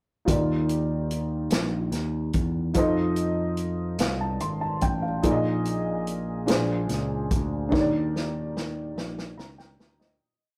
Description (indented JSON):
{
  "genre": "slow gospel",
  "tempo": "48 BPM (dotted quarters)",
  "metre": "6/8",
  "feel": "straight",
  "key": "Eb major",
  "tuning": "A4 = 440 Hz",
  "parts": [
    { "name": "dark upright piano", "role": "accompaniment", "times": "0.3-10.4 s", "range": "Bb2 to C6", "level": "-30 LUFS", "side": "equal", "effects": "none" },
    { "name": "picked electric bass", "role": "bass", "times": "0.3-10.2 s", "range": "Ab1 to F2", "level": "-31 LUFS", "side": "equal", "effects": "none" },
    { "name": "swinging big-band drum kit", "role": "drums", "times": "0.3-10.2 s", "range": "hi-hat, kick drum, snare drum", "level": "-30 LUFS", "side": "equal", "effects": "none" }
  ],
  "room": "moderate studio reverb, RT60 0.5 s",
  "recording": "rough rehearsal-room recording, warm saturation",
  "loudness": "-26 LUFS",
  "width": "mono",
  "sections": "0.3-10.2 A section",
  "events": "fade-out 7.7-10.2; drum fill 7.7-10.2",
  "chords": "0.3 Ebmaj9; 2.8 F7; 5.2 Bb7sus4; 6.5 Bb9; 7.7 Ebmaj7"
}